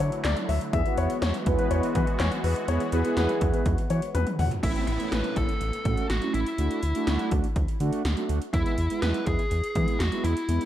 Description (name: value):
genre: synth-pop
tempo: 123 BPM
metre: 4/4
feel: straight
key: A major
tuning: A4 = 440 Hz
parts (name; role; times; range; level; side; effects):
- warm grand piano; second line; 0.0-4.5 s; B4 to F#5; -31 LUFS; left 7 dB; analog delay
- sweeping resonant pad; sustained chords; 0.0-4.6 s; D3 to F#4; -34 LUFS; equal; chorus
- round analog bass; bass; 0.0-10.6 s; A1 to E3; -26 LUFS; equal; none
- 80s electronic pad drums; drums; 0.0-10.7 s; crash cymbal, handclaps, hi-hat, kick drum, snare drum, toms; -29 LUFS; equal; gated reverb on snare and toms, overdrive
- mellow synth brass; accompaniment; 0.7-10.7 s; G#3 to B4; -30 LUFS; right 2 dB; chorus
- fuzz lead guitar; melody; 4.6-10.7 s; E4 to B4; -31 LUFS; equal; distortion
- downlifter; sound effects; 4.7-8.5 s; none; -39 LUFS; equal; none
room: light reverb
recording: dark, warm production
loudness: -23 LUFS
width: side -12 dB against mid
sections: 0.0-4.6 A section; 4.6-10.7 B section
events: drum fill 4.1-4.6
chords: 0.0 Dadd9; 0.7 Eadd9; 4.6 A; 6.6 Dadd9; 8.5 E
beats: 0.24 | 0.73 1.22 1.71 2.19 | 2.68 3.17 3.66 4.15 | 4.63 5.12 5.61 6.10 | 6.58 7.07 7.56 8.05 | 8.54 9.02 9.51 10.00 | 10.49